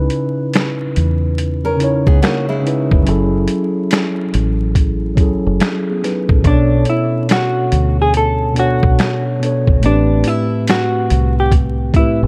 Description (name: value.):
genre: lo-fi hip hop.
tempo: 71 BPM.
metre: 4/4.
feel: swing 65% on 16ths.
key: B dorian.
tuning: A4 = 439 Hz.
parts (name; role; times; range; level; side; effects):
mellow tine electric piano; accompaniment; 0.0-12.3 s; A2 to C#5; -20 LUFS; equal; cassette tape.
deep dub fingered electric bass; bass; 0.0-12.3 s; E#1 to E2; -19 LUFS; equal; none.
boom bap sampler-style drum kit; drums; 0.1-12.2 s; finger snaps, hi-hat, kick drum, snare drum; -18 LUFS; equal; none.
nylon-string guitar; second line; 1.6-3.0 s; G#3 to A#4; -25 LUFS; equal; analog delay.
hollow-body jazz guitar; melody; 6.5-12.2 s; D4 to A4; -20 LUFS; equal; none.
room: light reverb.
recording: vinyl crackle.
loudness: -15 LUFS.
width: mono.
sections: 0.0-12.3 A section.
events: none.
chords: 0.0 C#m9; 3.1 F#m9; 6.4 Bm9; 9.8 Am9.